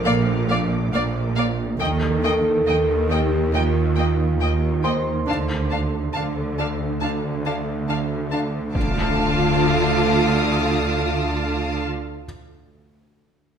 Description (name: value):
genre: cinematic, suspense film score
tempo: 69 BPM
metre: 4/4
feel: straight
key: D phrygian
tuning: A4 = 442 Hz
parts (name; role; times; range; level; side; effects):
- rich chamber violin section; melody; 0.0-11.8 s; F5 to A5; -30 LUFS; left 2 dB; none
- mellow French horn section; sustained chords; 0.0-11.8 s; D4 to Bb4; -27 LUFS; equal; none
- warm chamber cello section; bass; 0.0-11.8 s; Bb2 to Eb3; -27 LUFS; right 4 dB; none
- bowed-like drone; drone; 0.0-11.8 s; Bb1 to Eb2; -24 LUFS; equal; built-in reverb
- clear studio violin section; texture; 0.0-1.3, 8.7-11.8 s; D6 to F6; -32 LUFS; left 3 dB; none
- felt-muted upright piano; texture; 0.0-8.8 s; A4 to C6; -32 LUFS; left 1 dB; none
- warm symphonic violin section; second line; 0.1-11.9 s; D5 to F5; -29 LUFS; left 2 dB; none
- warm studio viola section; accompaniment; 0.1-11.8 s; Bb3 to F4; -28 LUFS; right 3 dB; none
- warm studio double bass section; bass; 0.1-11.9 s; Bb1 to Eb2; -27 LUFS; right 4 dB; none
- impact; sound effects; 8.8-11.9 s; none; -27 LUFS; equal; none
room: wet recital hall reverb, RT60 1.3 s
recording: none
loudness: -19 LUFS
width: side -7 dB against mid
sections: 0.0-8.8 A section; 8.8-12.2 B section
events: impact 8.8-12.2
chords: 0.0 Bb; 1.8 Eb; 5.3 N.C.; 8.8 Dm